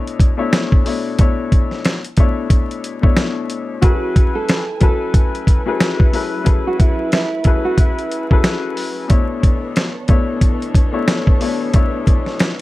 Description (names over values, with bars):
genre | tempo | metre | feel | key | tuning
hip hop, boom-bap hip-hop | 91 BPM | 4/4 | swing 58% on 16ths | unclear | A4 = 435 Hz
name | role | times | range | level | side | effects
clear upright piano | accompaniment | 0.0-12.5 s | B2 to C#5 | -21 LUFS | left 5 dB | cassette tape, high-pass filter, low-pass filter
dusty soul sampler-style drum kit | drums | 0.1-12.6 s | hi-hat, kick drum, snare drum | -14 LUFS | equal | none
nylon-string guitar | melody | 3.8-8.4 s | E4 to A4 | -22 LUFS | right 3 dB | high-pass filter, low-pass filter, slapback echo
warm studio string section | sustained chords | 3.8-12.6 s | E3 to G#5 | -30 LUFS | right 4 dB | high-pass filter, low-pass filter
room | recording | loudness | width
light reverb | dark, warm production, vinyl crackle | -14 LUFS | side -18 dB against mid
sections
0.0-12.6 A section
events
none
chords
0.0 Bm11; 3.8 F#m11; 9.1 Bm11